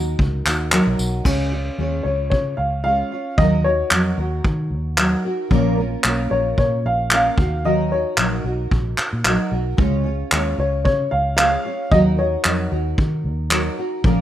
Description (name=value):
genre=acoustic pop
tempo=112 BPM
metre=4/4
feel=swing 55% on 16ths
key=Eb minor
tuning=A4 = 439 Hz
part: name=fingerpicked steel-string acoustic guitar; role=accompaniment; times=0.0-14.2 s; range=Bb2 to Db5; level=-23 LUFS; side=equal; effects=double-tracked left and right
part: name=vintage muted fingered electric bass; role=bass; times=0.0-14.2 s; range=Bb1 to Eb3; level=-23 LUFS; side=equal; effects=none
part: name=vintage brush drum kit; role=drums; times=0.2-14.2 s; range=crash cymbal, handclaps, kick drum, tambourine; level=-20 LUFS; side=equal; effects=none
part: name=dark upright piano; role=melody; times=2.0-12.7 s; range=Db5 to F5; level=-20 LUFS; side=left 1 dB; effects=digital delay
room=studio reverb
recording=rough home demo mix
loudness=-17 LUFS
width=side -12 dB against mid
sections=0.0-1.2 A section; 1.2-14.2 B section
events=none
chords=0.0 Ebm; 1.2 Db; 3.4 Ebm; 5.5 Bbm; 7.4 Ebm; 9.8 Db; 11.9 Ebm